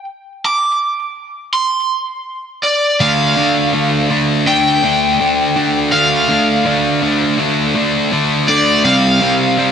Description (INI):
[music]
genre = rock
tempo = 82 BPM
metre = 4/4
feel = straight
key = D minor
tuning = A4 = 439 Hz
[part]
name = crunchy overdriven guitar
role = melody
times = 0.0-9.7 s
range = D5 to D6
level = -15 LUFS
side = equal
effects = spring reverb, tape echo
[part]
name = thick fuzz guitar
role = riff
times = 3.0-9.7 s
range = C3 to D4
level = -13 LUFS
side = equal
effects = distortion
[sound]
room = light reverb, digital ambience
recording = none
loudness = -12 LUFS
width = side -7 dB against mid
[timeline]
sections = 0.0-3.0 A section; 3.0-9.7 B section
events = build-up 0.0-3.0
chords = 0.0 N.C.; 3.0 Dm; 8.8 Csus4